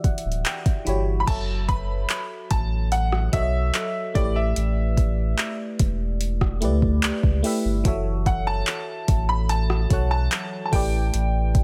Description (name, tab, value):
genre	contemporary R&B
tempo	73 BPM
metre	4/4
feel	straight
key	unclear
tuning	A4 = 442 Hz
part	FM electric piano	accompaniment	0.0-11.6 s	E3 to B5	-31 LUFS	equal	chorus, phaser
part	warm sub bass	bass	0.0-11.6 s	D1 to D2	-26 LUFS	equal	none
part	smooth R&B drum kit	drums	0.0-11.6 s	crash cymbal, handclaps, hi-hat, kick drum, rim click	-26 LUFS	equal	none
part	clear grand piano	melody	1.2-11.6 s	D5 to B5	-31 LUFS	equal	tape echo
part	glassy wavetable pluck	texture	1.7-8.2 s	G4 to B4	-42 LUFS	equal	chorus, tape echo
room	little or no reverb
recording	none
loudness	-23 LUFS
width	mono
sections	0.0-1.3 A section; 1.3-11.6 B section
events	FM electric piano fill 0.0-1.3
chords	0.0 Em9; 1.3 F#m7; 4.2 A7sus4; 7.8 F#m7; 10.7 A7sus4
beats	0.45 | 1.27 2.10 2.92 3.74 | 4.56 5.38 6.21 7.03 | 7.85 8.67 9.49 10.32 | 11.14